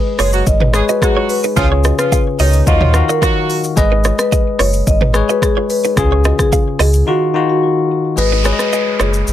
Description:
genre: afrobeats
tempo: 109 BPM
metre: 4/4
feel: straight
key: G# dorian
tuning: A4 = 441 Hz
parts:
  - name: bell-like tine electric piano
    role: accompaniment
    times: 0.0-9.3 s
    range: C#3 to E#5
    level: -19 LUFS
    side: left 7 dB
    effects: none
  - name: direct-recorded clean electric guitar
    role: riff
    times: 0.0-9.1 s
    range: D#4 to E#5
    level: -21 LUFS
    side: right 7 dB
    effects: wide subtle chorus
  - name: marimba with medium mallets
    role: melody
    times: 0.2-9.1 s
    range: F#4 to D#5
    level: -18 LUFS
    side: equal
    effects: none
  - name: warm horn section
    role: second line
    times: 0.2-3.6 s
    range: D#3 to G#4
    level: -20 LUFS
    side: right 4 dB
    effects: none
  - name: sub bass with octave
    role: bass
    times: 0.2-9.3 s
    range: F#1 to D#2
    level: -14 LUFS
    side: equal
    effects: none
  - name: deep house drum kit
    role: drums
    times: 0.2-9.3 s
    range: hi-hat, kick drum, rim click, shaker, toms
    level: -17 LUFS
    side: equal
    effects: none
  - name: downlifter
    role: sound effects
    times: 8.2-9.3 s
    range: none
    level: -21 LUFS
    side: right 2 dB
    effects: none
room: light reverb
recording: none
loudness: -11 LUFS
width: side -11 dB against mid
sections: 0.0-8.2 A section; 8.2-9.3 B section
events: drums muted 7.1-8.2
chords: 0.0 G#m; 1.6 C#; 2.7 D#madd9; 3.8 G#m; 6.0 C#; 7.1 D#madd9; 8.2 G#m

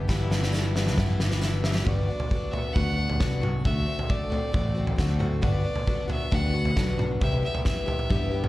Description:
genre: indie folk with a building arrangement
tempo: 135 BPM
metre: 4/4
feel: straight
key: G major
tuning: A4 = 439 Hz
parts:
  - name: fingerpicked steel-string acoustic guitar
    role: accompaniment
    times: 0.0-8.5 s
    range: G2 to A4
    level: -37 LUFS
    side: left 2 dB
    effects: none
  - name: picked plugged-in twelve-string acoustic guitar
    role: accompaniment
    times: 0.0-8.5 s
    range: G2 to G4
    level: -32 LUFS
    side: left 3 dB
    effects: slapback echo
  - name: fingered electric bass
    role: bass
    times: 0.0-8.5 s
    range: G1 to G2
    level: -26 LUFS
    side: equal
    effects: none
  - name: loose indie drum kit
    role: drums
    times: 0.1-8.5 s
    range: kick drum, snare drum, toms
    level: -27 LUFS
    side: equal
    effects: none
  - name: tambourine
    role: percussion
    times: 0.5-1.5 s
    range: none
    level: -45 LUFS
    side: right 3 dB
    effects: none
  - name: clear fiddle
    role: melody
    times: 1.9-8.5 s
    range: D5 to F#5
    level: -33 LUFS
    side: equal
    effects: none
room: little or no reverb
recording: live gig heard through the venue's PA, club reverb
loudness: -23 LUFS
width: side -17 dB against mid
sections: 0.0-1.9 A section; 1.9-8.5 B section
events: drum fill 0.1-1.9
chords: 0.0 Em7/G; 1.9 Gmaj7; 3.6 D7; 5.4 Gmaj7; 7.2 Cmaj7

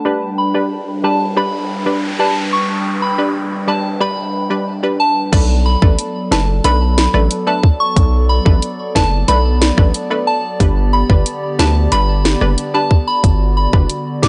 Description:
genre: dancehall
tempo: 91 BPM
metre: 4/4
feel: straight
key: B minor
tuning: A4 = 440 Hz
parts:
  - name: hollow soft pad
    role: sustained chords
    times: 0.0-14.3 s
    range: D3 to G5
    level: -24 LUFS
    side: equal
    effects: chorus, sidechain pumping, low-pass filter
  - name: punchy chord stab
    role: accompaniment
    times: 0.1-14.3 s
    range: G3 to B4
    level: -23 LUFS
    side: equal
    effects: chorus, low-pass filter
  - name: noise sweep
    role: sound effects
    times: 0.3-5.3 s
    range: none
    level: -29 LUFS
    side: equal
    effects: none
  - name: soft synth bell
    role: melody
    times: 0.4-14.3 s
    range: A5 to D6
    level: -22 LUFS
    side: equal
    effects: chorus, phaser, low-pass filter, delay
  - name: hard-hitting 808-style bass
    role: bass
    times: 5.3-14.3 s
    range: F#1 to D2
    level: -17 LUFS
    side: equal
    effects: none
  - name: island pop drum kit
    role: drums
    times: 5.3-14.3 s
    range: crash cymbal, hi-hat, kick drum, rim click, snare drum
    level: -16 LUFS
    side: equal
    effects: none
room: digital ambience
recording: nothing above 10.3 kHz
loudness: -15 LUFS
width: mono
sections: 0.0-5.3 A section; 5.3-14.3 B section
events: filter sweep 0.0-5.3; noise sweep 0.4-5.3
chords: 0.1 G; 5.3 Bm7; 10.6 G

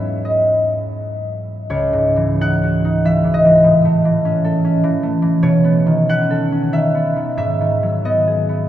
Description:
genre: classical, solo harp piece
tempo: 80-105 BPM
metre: 3/4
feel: rubato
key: C# minor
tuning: A4 = 445 Hz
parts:
  - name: concert harp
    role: solo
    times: 0.0-8.7 s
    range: C#2 to G#5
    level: -14 LUFS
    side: equal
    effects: none
room: wet cathedral reverb, RT60 6.4 s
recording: recorded in a church or concert hall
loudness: -14 LUFS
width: side -12 dB against mid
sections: 0.0-1.7 A section; 1.7-8.7 B section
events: none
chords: 0.0 G#7sus4; 1.7 C#madd9; 3.6 A(#11); 5.4 B9; 7.4 G#m7

